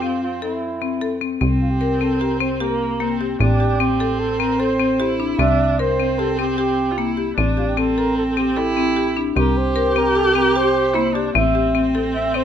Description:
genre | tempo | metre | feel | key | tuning
contemporary instrumental, chamber music in an uneven meter | 151 BPM | 5/4 | straight | unclear | A4 = 442 Hz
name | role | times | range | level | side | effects
breathy flugelhorn | melody | 0.0-12.4 s | E4 to E5 | -23 LUFS | right 4 dB | none
rich viola | second line | 0.0-12.4 s | Bb3 to G4 | -22 LUFS | right 3 dB | none
marimba with hard mallets | arpeggios | 0.0-12.4 s | Bb3 to Bb4 | -21 LUFS | left 7 dB | none
plucky analog bass | bass | 0.0-12.4 s | A1 to F2 | -24 LUFS | right 1 dB | none
room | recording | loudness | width
light reverb | close, detailed microphones | -17 LUFS | side -9 dB against mid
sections
0.0-1.4 A section; 1.4-12.4 B section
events
none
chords
0.0 Fmaj7; 1.4 C5; 3.4 Am7; 5.4 C7; 7.4 Am7; 9.4 C5; 11.3 Am7

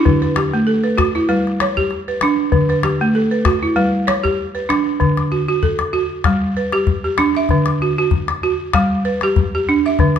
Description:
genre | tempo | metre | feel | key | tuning
west african traditional, West African string and xylophone music | 97 BPM | 4/4 | swing 55% on 16ths | D major | A4 = 440 Hz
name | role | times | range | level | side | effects
balafon | arpeggios | 0.0-10.2 s | D3 to E5 | -16 LUFS | right 1 dB | none
calabash | percussion | 0.1-10.2 s | none | -20 LUFS | left 5 dB | none
room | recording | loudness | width
wet recital hall reverb, RT60 1.3 s | dark, warm production | -14 LUFS | side -8 dB against mid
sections
0.0-5.0 A section; 5.0-10.2 B section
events
none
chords
0.1 D; 1.3 G; 2.5 D; 3.8 G; 5.0 D; 6.2 G; 7.5 D; 8.7 G

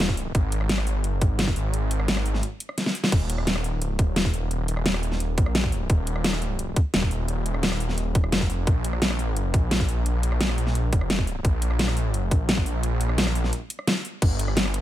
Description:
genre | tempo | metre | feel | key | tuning
dark technical drum and bass | 173 BPM | 4/4 | straight | unclear | A4 = 440 Hz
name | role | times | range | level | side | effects
wide detuned saw bass | bass | 0.0-14.8 s | Eb1 to Bb1 | -25 LUFS | equal | chorus, overdrive
dubstep drum kit | drums | 0.0-14.8 s | crash cymbal, hi-hat, rim click, snare drum | -26 LUFS | equal | none
electronic kick drum | drums | 0.1-14.3 s | none | -21 LUFS | equal | overdrive
room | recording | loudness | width
little or no reverb | none | -22 LUFS | side -13 dB against mid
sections
0.0-14.2 A section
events
drop 0.0-14.2; break 2.4-3.1, 13.5-14.2; drum fill 2.8-3.1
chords
none

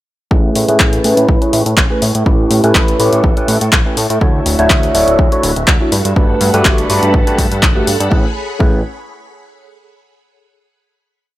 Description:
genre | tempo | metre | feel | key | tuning
filtered disco house | 123 BPM | 4/4 | swing 53% on 16ths | A major | A4 = 440 Hz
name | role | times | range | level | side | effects
overdriven tine electric piano | accompaniment | 0.3-8.8 s | A3 to C#5 | -15 LUFS | equal | phaser, sidechain pumping, low-pass filter
phased string machine | sustained chords | 0.3-8.3 s | F#4 to C#6 | -24 LUFS | equal | ensemble chorus, phaser, sidechain pumping, low-pass filter
fat analog bass | bass | 0.3-8.8 s | D1 to A2 | -17 LUFS | equal | tube saturation, sidechain pumping, low-pass filter
electronic kick drum | drums | 0.3-8.7 s | none | -13 LUFS | equal | none
punchy analog drum machine | drums | 0.6-8.1 s | handclaps, hi-hat | -16 LUFS | left 1 dB | overdrive, sidechain pumping on hats
room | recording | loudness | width
light reverb | none | -10 LUFS | side -15 dB against mid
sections
0.3-8.1 groove; 8.1-10.1 final chord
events
filter sweep 0.3-8.1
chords
0.3 Amaj9; 2.0 A7; 4.2 Dmaj9; 5.9 Gmaj9; 8.1 Amaj9

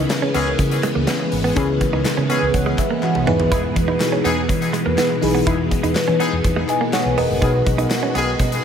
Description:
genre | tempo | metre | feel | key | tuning
1980s-style pop | 123 BPM | 4/4 | straight | unclear | A4 = 440 Hz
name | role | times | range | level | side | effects
FM electric piano with soft pad layer | accompaniment | 0.0-8.6 s | B2 to G#5 | -21 LUFS | left 1 dB | chorus, phaser
string machine, full ensemble | sustained chords | 0.0-8.6 s | B2 to F#4 | -23 LUFS | equal | phaser, ensemble chorus
direct-recorded clean electric guitar | riff | 0.0-8.4 s | G#3 to E4 | -26 LUFS | right 5 dB | analog chorus, diffuse ambient delay
woody fretless electric bass | bass | 0.0-8.6 s | E1 to E3 | -24 LUFS | equal | none
big rock drum kit | drums | 0.1-8.6 s | hi-hat, kick drum, snare drum, tambourine, toms | -24 LUFS | equal | none
group handclap | percussion | 0.1-8.0 s | none | -36 LUFS | left 5 dB | none
clear horn section | stabs | 0.3-8.3 s | D#3 to G#4 | -27 LUFS | left 3 dB | diffuse ambient delay
room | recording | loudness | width
wet plate reverb, RT60 1.6 s, small room ambience | dreamy mix soaked in reverb | -16 LUFS | side -8 dB against mid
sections
0.0-8.6 A section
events
drum fill 3.0-3.5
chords
0.0 C#m7; 3.3 Emaj7; 7.4 B6

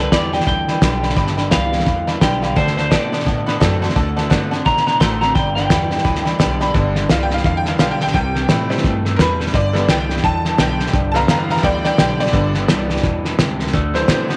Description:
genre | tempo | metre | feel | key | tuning
rockabilly | 172 BPM | 4/4 | swing 61% on 8ths | G major | A4 = 440 Hz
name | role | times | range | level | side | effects
electric guitar through a small old amp | melody | 0.0-6.2 s | B4 to C6 | -23 LUFS | equal | tape echo
picked steel-string acoustic guitar | accompaniment | 0.0-14.4 s | G2 to G4 | -28 LUFS | equal | none
tack piano | accompaniment | 0.0-14.4 s | D3 to C6 | -24 LUFS | equal | none
electric guitar through a small old amp | riff | 0.0-14.4 s | G2 to B3 | -26 LUFS | equal | warbly pitch drift
upright bass | bass | 0.0-14.4 s | G1 to B2 | -26 LUFS | equal | none
cloth-damped thuddy drum kit | drums | 0.1-14.3 s | hi-hat, kick drum, snare drum | -21 LUFS | equal | none
room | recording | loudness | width
moderate spring reverb, RT60 1.4 s, small room ambience | none | -17 LUFS | mono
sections
0.0-6.7 A section; 6.7-14.4 B section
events
honky-tonk piano solo 6.7-14.4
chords
0.0 G; 2.6 D7; 5.4 G; 8.1 C; 9.5 G; 13.7 D7

